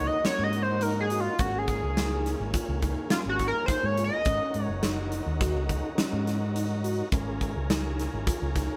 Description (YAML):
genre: progressive instrumental, band music in an uneven meter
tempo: 105 BPM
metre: 5/4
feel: straight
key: unclear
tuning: A4 = 439 Hz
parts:
  - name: sync lead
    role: melody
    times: 0.0-4.9 s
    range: F4 to Eb5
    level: -31 LUFS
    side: equal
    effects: chorus
  - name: tonewheel organ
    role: accompaniment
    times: 0.0-8.8 s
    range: Bb3 to Bb4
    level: -39 LUFS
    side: equal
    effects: chorus vibrato
  - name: mellow tine electric piano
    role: arpeggios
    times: 0.0-8.8 s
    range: Db4 to Gb4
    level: -38 LUFS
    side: equal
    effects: none
  - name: picked electric bass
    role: bass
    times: 0.0-8.7 s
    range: Gb1 to Ab2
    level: -33 LUFS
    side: equal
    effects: none
  - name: huge arena drum kit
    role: drums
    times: 0.2-8.7 s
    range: hi-hat, kick drum, snare drum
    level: -33 LUFS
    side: equal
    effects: none
room: moderate studio reverb, RT60 0.7 s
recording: band playing live in one room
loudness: -28 LUFS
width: mono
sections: 0.0-8.8 A section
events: analog synth lead solo 0.0-8.8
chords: 0.0 Ab7sus4; 1.4 Absus4; 4.3 Ab7sus4; 7.1 Bbm11/Ab